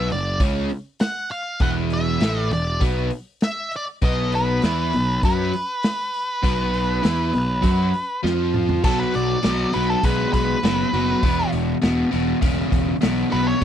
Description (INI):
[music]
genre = blues rock power trio and southern rock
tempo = 100 BPM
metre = 4/4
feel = straight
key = unclear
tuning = A4 = 440 Hz
[part]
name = octave-fuzz lead guitar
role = melody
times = 0.0-13.6 s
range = A4 to F#5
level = -25 LUFS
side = equal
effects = distortion
[part]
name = biting overdriven guitar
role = riff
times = 0.0-13.6 s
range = E2 to F#4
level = -22 LUFS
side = equal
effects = none
[part]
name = fuzz picked electric bass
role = bass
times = 0.0-13.6 s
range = E1 to F#2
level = -24 LUFS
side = equal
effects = overdrive
[part]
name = vintage drum kit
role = drums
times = 0.1-13.6 s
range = crash cymbal, hi-hat, kick drum, snare drum, toms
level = -21 LUFS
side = equal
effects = none
[sound]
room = little or no reverb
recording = dry, close 1970s-style studio recording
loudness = -19 LUFS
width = side -10 dB against mid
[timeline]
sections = 0.0-8.8 A section; 8.8-13.6 B section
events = drum fill 8.2-8.8; lead electric guitar solo 8.8-13.6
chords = 0.0 F#5; 1.6 E5; 4.0 B5; 11.2 E5